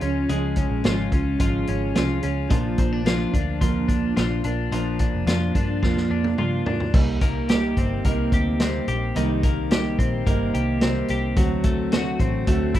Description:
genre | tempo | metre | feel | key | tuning
jangly indie pop | 108 BPM | 4/4 | straight | unclear | A4 = 440 Hz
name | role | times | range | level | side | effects
fingerpicked steel-string acoustic guitar | accompaniment | 0.0-12.8 s | Bb2 to F#4 | -26 LUFS | right 5 dB | plate reverb
twelve-string electric guitar | arpeggios | 0.0-12.8 s | Eb3 to G4 | -26 LUFS | left 5 dB | plate reverb
vintage muted picked electric bass | bass | 0.0-12.8 s | F1 to Ab2 | -26 LUFS | equal | none
vintage drum kit | drums | 0.0-12.8 s | crash cymbal, hi-hat, kick drum, snare drum, toms | -23 LUFS | equal | none
room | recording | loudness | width
moderate studio reverb, RT60 0.5 s | rough home demo mix | -20 LUFS | side -12 dB against mid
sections
0.0-6.9 A section; 6.9-12.8 B section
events
drum fill 5.8-6.9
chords
0.0 Db; 2.5 Bb; 6.9 Cm7; 11.4 D7

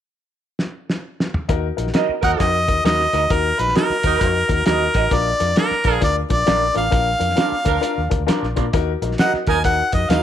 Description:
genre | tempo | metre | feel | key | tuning
uptempo 1960s-style soul | 132 BPM | 4/4 | swing 63% on 8ths | Eb harmonic minor | A4 = 441 Hz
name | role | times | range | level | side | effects
cloth-damped thuddy drum kit | drums | 0.6-10.2 s | hi-hat, kick drum, snare drum, toms | -21 LUFS | equal | none
dark upright piano | accompaniment | 1.5-10.2 s | D4 to Bb4 | -24 LUFS | left 13 dB | none
vintage muted fingered electric bass | bass | 1.5-10.2 s | A1 to Bb2 | -24 LUFS | equal | none
mellow horn section | second line | 1.9-9.6 s | F3 to Bb4 | -25 LUFS | right 11 dB | none
electric guitar through a small old amp | stabs | 2.0-10.2 s | D4 to Eb5 | -26 LUFS | right 9 dB | phaser, tape echo
clear harmonica | melody | 2.2-10.2 s | Bb4 to Ab5 | -19 LUFS | equal | none
room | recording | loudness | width
moderate plate reverb, RT60 1.0 s, studio reverb | 1960s-style stereo with parts hard left and right | -16 LUFS | side -10 dB against mid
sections
0.0-1.5 A section; 1.5-10.2 B section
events
drum fill 0.6-1.5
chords
0.0 N.C.; 1.5 Ebm; 5.1 Bb; 8.7 Ebm

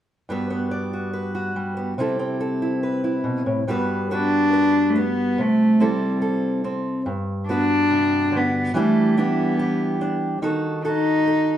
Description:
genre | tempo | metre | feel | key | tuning
folk | 71 BPM | 4/4 | straight | G major | A4 = 440 Hz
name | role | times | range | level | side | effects
fingerpicked steel-string acoustic guitar | accompaniment | 0.3-11.6 s | G2 to D5 | -23 LUFS | right 1 dB | none
warm cello | melody | 4.1-11.6 s | G3 to D#4 | -19 LUFS | equal | none
room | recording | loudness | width
wet studio reverb, RT60 0.7 s | heard from further back in the room | -19 LUFS | side -11 dB against mid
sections
0.3-3.7 A section; 3.7-11.6 B section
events
none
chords
0.3 Gmaj7; 2.0 C6; 3.7 Gmaj7; 5.4 C6; 7.1 Gmaj7; 8.7 Em7; 10.4 D#dim

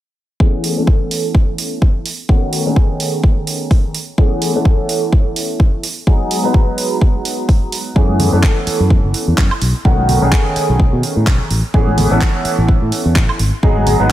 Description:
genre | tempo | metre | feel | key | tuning
filtered disco house | 127 BPM | 4/4 | swing 56% on 16ths | unclear | A4 = 440 Hz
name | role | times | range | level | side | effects
bright concert grand piano | accompaniment | 0.4-14.1 s | D#3 to B4 | -18 LUFS | equal | phaser, sidechain pumping, low-pass filter
electronic kick drum | drums | 0.4-13.7 s | none | -12 LUFS | equal | none
house drum kit | drums | 0.6-14.0 s | handclaps, hi-hat, woodblock | -22 LUFS | right 3 dB | sidechain pumping on hats, sidechain pumping on perc
fingered electric bass | bass | 8.0-14.1 s | F#1 to B2 | -16 LUFS | equal | sidechain pumping, low-pass filter
tambourine and congas | percussion | 8.0-14.1 s | none | -21 LUFS | right 2 dB | sidechain pumping on perc, low-pass filter on perc
room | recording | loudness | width
light reverb | none | -12 LUFS | side -14 dB against mid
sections
0.4-14.1 A section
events
filter sweep 0.4-14.1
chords
0.4 Amaj9/E; 2.1 B7; 3.9 Amaj9; 5.8 G#m7; 8.0 F#m11; 9.6 B7; 11.5 Amaj9; 13.4 G#m7

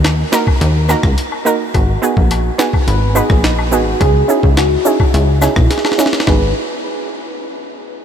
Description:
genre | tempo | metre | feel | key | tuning
dancehall | 106 BPM | 4/4 | straight | G# minor | A4 = 438 Hz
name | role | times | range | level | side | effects
plucky analog bass | bass | 0.0-6.5 s | G#1 to D#2 | -15 LUFS | equal | none
jungle sampler-style drum kit | drums | 0.0-6.4 s | handclaps, hi-hat, kick drum, rim click, snare drum | -16 LUFS | equal | none
woodblock and cabasa | percussion | 0.1-6.5 s | none | -27 LUFS | left 6 dB | none
analog pluck | accompaniment | 0.3-6.5 s | A#3 to B4 | -18 LUFS | right 3 dB | chorus, low-pass filter
soft struck synth lead | second line | 1.7-6.5 s | D#4 to B4 | -19 LUFS | equal | chorus, phaser, tape echo
room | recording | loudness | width
moderate huge ambient reverb, RT60 7.1 s | dreamy mix soaked in reverb | -11 LUFS | side -8 dB against mid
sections
0.0-6.3 A section; 6.3-8.0 B section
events
filter sweep on synth pluck 0.0-6.3; drum fill 5.7-6.3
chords
0.0 D#m; 1.7 G#m7; 4.0 C#madd9; 6.3 G#m7

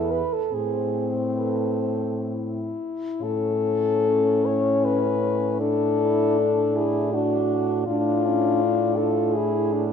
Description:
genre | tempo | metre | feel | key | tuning
classical, lyrical piece for horn quartet | 57-83 BPM | 3/4 | rubato | A minor, A major from 3.2 s | A4 = 439 Hz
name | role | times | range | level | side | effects
warm French horn | melody | 0.0-9.8 s | D4 to C#5 | -24 LUFS | left 7 dB | none
mellow French horn | second line | 0.0-9.9 s | C#4 to B4 | -28 LUFS | right 8 dB | none
mellow French horn | accompaniment | 0.0-9.8 s | C4 to E4 | -28 LUFS | left 2 dB | none
mellow French horn | bass | 0.0-9.9 s | E2 to A2 | -28 LUFS | right 3 dB | none
room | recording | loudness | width
moderate scoring stage reverb, RT60 1.7 s | dark, warm production | -21 LUFS | side -7 dB against mid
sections
0.0-3.2 A section; 3.2-9.9 B section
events
none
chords
0.0 E5; 0.5 Am; 3.2 A; 5.6 D5/A

